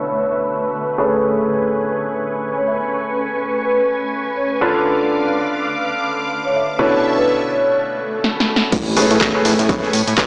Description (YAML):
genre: piano house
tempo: 124 BPM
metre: 4/4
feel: swing 58% on 16ths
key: A major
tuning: A4 = 440 Hz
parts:
  - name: vibraphone with soft mallets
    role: melody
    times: 0.0-7.8 s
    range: B4 to E5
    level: -20 LUFS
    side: equal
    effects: digital delay
  - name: string machine, violins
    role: sustained chords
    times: 0.0-10.3 s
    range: B4 to D6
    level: -24 LUFS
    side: equal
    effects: ensemble chorus, sidechain pumping
  - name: clear concert grand piano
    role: riff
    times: 0.0-10.3 s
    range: A2 to B4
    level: -19 LUFS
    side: equal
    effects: sidechain pumping, digital delay
  - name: granular cloud pad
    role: texture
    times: 0.0-10.3 s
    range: D3 to C#6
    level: -26 LUFS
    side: equal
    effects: built-in reverb, sidechain pumping
  - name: swell and impact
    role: sound effects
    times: 7.9-10.3 s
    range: none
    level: -28 LUFS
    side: equal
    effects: none
  - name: house drum kit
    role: drums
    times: 8.2-10.3 s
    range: crash cymbal, handclaps, hi-hat, snare drum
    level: -18 LUFS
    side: equal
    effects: low-pass filter on snare, low-pass filter on hats, low-pass filter on cymbals
  - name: fat analog bass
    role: bass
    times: 8.7-10.3 s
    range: A1 to A2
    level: -18 LUFS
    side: equal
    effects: sidechain pumping
  - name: breakbeat sampler-style drum kit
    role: drums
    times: 8.7-10.3 s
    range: hi-hat, snare drum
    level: -28 LUFS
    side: equal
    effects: none
  - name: electronic kick drum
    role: drums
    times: 8.7-10.3 s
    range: none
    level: -19 LUFS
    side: equal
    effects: none
  - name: tambourine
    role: percussion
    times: 8.7-10.3 s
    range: none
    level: -26 LUFS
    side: equal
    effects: none
room: moderate lush hall reverb, RT60 2.5 s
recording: played on a big sound system in a bare room, stone room reverb, low-pass filter, small speaker sound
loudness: -15 LUFS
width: side -31 dB against mid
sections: 0.0-8.7 A section; 8.7-10.3 B section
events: filter sweep 0.0-8.7; break 7.8-8.7; swell 7.9-8.7; drum fill 8.2-8.7; drop 8.7-10.3; impact 8.7-10.3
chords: 0.0 Bm11; 1.0 Amaj9; 4.6 Dm6; 6.8 Bm11; 8.7 Amaj9